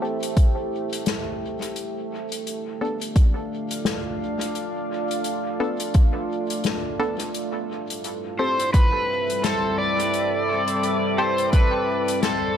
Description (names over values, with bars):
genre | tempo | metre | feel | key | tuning
ambient dub | 86 BPM | 4/4 | swing 58% on 16ths | A minor | A4 = 441 Hz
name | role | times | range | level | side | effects
deep dark ambient pad | sustained chords | 0.0-12.6 s | G3 to F5 | -27 LUFS | right 1 dB | chorus, built-in reverb, vintage 12-bit sampler grit
filtered dub chord stab | stabs | 0.0-11.3 s | B3 to A4 | -30 LUFS | left 1 dB | chorus, dub echo
soft-mallet drum kit | drums | 0.2-12.4 s | hi-hat, snare drum | -30 LUFS | left 5 dB | dub echo
electronic kick drum | drums | 0.4-11.7 s | none | -16 LUFS | equal | overdrive
overdriven slide guitar | melody | 8.4-12.6 s | A4 to D5 | -22 LUFS | equal | dub echo
room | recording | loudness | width
light reverb | echo-heavy mix | -21 LUFS | side -9 dB against mid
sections
0.0-12.6 A section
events
none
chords
0.0 Am7; 1.8 Bm7b5 (rootless); 7.3 Am7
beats
0.37 1.07 | 1.76 2.46 3.16 3.86 | 4.55 5.25 5.95 6.65 | 7.35 8.04 8.74 9.44 | 10.14 10.83 11.53 12.23